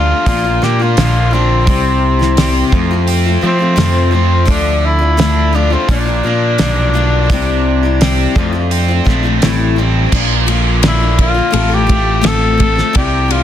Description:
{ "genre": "folk rock and heartland rock", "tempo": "85 BPM", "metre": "4/4", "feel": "straight", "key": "unclear", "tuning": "A4 = 440 Hz", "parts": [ { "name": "breathy tenor saxophone", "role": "melody", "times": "0.0-13.4 s", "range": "C4 to A4", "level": "-17 LUFS", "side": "left 1 dB", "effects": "none" }, { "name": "picked old ladder-braced acoustic guitar", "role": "accompaniment", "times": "0.0-13.4 s", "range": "F2 to D5", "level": "-18 LUFS", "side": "left 8 dB", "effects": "none" }, { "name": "overdriven electric guitar", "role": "riff", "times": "0.0-13.4 s", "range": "F2 to F4", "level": "-20 LUFS", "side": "right 3 dB", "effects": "none" }, { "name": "modern bright picked electric bass", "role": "bass", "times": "0.0-13.4 s", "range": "A1 to F3", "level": "-15 LUFS", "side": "right 1 dB", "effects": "none" }, { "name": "damped 70s drum kit", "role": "drums", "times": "0.3-13.4 s", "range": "crash cymbal, hi-hat, kick drum, ride cymbal, snare drum", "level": "-16 LUFS", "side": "right 1 dB", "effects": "none" } ], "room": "studio reverb", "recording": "dense, heavily limited modern master", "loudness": "-10 LUFS", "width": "side -10 dB against mid", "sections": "0.0-10.1 A section; 10.1-13.4 B section", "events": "none", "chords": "0.3 Bb; 1.7 C; 2.7 F; 4.5 Dm; 5.9 Bb; 7.3 C; 8.4 F; 9.4 Am7; 10.1 Bb; 11.5 F/A" }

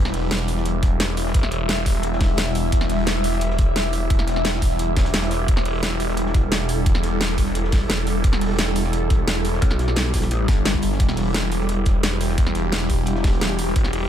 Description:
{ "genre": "dark technical drum and bass", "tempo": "174 BPM", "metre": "4/4", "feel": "straight", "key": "E minor", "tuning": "A4 = 440 Hz", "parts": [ { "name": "swarming drone", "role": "sustained chords", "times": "0.0-14.1 s", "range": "G3 to E5", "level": "-25 LUFS", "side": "equal", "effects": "built-in reverb, sidechain pumping" }, { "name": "phased detuned saw bass", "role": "bass", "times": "0.0-14.1 s", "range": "E1 to G1", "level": "-23 LUFS", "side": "equal", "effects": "phaser, tube saturation" }, { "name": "crunchy breakbeat drum kit", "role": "drums", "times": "0.1-14.0 s", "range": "hi-hat, snare drum", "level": "-38 LUFS", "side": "equal", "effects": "none" }, { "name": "dubstep drum kit", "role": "drums", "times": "0.1-14.0 s", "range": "hi-hat, snare drum", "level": "-25 LUFS", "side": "equal", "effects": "none" }, { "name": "electronic kick drum", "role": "drums", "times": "0.8-13.8 s", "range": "none", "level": "-19 LUFS", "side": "equal", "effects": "none" }, { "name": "pulsing pluck wobble bass", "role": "bass", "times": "9.6-10.5 s", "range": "B1", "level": "-21 LUFS", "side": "equal", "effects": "chorus" } ], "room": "digital ambience", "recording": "none", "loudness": "-18 LUFS", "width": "side -10 dB against mid", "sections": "0.0-14.1 A section", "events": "kick drops out 5.1-5.5", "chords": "0.0 Em" }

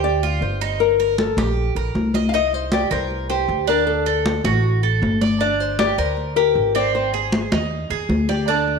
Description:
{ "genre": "latin, Cuban son and guajira", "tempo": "156 BPM", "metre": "4/4", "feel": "straight", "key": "G minor", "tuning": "A4 = 440 Hz", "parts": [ { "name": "nylon-string guitar", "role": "melody", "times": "0.0-8.8 s", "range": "G4 to F5", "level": "-21 LUFS", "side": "left 9 dB", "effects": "none" }, { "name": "Cuban tres", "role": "arpeggios", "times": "0.0-8.8 s", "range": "C4 to Eb5", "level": "-22 LUFS", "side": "right 10 dB", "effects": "none" }, { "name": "upright bass", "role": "bass", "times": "0.0-8.8 s", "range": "G1 to Eb2", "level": "-24 LUFS", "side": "equal", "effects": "none" }, { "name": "congas", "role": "percussion", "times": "0.0-8.8 s", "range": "none", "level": "-23 LUFS", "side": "left 2 dB", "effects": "none" } ], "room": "moderate echo chamber reverb, RT60 1.5 s", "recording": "1960s-style stereo with parts hard left and right", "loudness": "-17 LUFS", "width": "side -5 dB against mid", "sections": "0.0-8.8 A section", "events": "none", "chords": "0.0 G7(no3); 0.8 Eb/G; 2.3 Cm7; 3.9 D; 5.4 Gm; 6.9 Ab" }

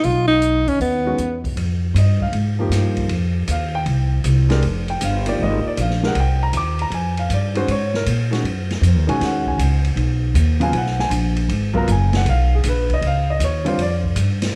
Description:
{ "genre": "modal jazz", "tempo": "157 BPM", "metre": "4/4", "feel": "swing 67% on 8ths", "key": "unclear", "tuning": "A4 = 440 Hz", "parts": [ { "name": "bright alto saxophone", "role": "melody", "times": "0.0-1.4 s", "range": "Cb4 to F4", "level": "-20 LUFS", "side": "equal", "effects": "none" }, { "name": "upright bass", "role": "bass", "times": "0.0-14.5 s", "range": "F1 to Bb2", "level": "-21 LUFS", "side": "equal", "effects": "none" }, { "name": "open jazz drum kit", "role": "drums", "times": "0.0-14.5 s", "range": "hi-hat, kick drum, ride cymbal, snare drum", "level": "-30 LUFS", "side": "equal", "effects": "none" }, { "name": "warm concert grand piano", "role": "accompaniment", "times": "1.1-14.0 s", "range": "Db3 to D6", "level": "-25 LUFS", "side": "equal", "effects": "none" } ], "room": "light reverb, small room reverb", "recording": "none", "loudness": "-19 LUFS", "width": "mono", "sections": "0.0-1.6 A section; 1.6-14.6 B section", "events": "none", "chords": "0.0 Abm (rootless); 1.6 Fm9; 7.7 Abm9; 13.8 Fsus2" }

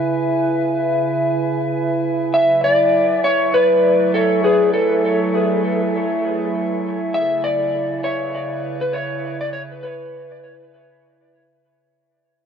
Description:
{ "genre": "ambient", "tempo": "100 BPM", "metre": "4/4", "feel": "swing 59% on 16ths", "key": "unclear", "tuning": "A4 = 442 Hz", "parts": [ { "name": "warbly tape-like pad", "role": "sustained chords", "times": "0.0-11.9 s", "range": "C#3 to G#5", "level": "-20 LUFS", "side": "right 1 dB", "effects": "chorus, built-in reverb" }, { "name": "electric slide guitar", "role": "melody", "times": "2.3-10.7 s", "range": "G#4 to E5", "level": "-17 LUFS", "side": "left 1 dB", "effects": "dub echo" } ], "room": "moderate huge ambient reverb, RT60 6.8 s", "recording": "dark, warm production", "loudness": "-16 LUFS", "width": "side -7 dB against mid", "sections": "0.0-11.9 A section", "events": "fade-out 5.5-11.9", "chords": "0.0 C#m7; 2.3 F#m7; 7.1 C#m7" }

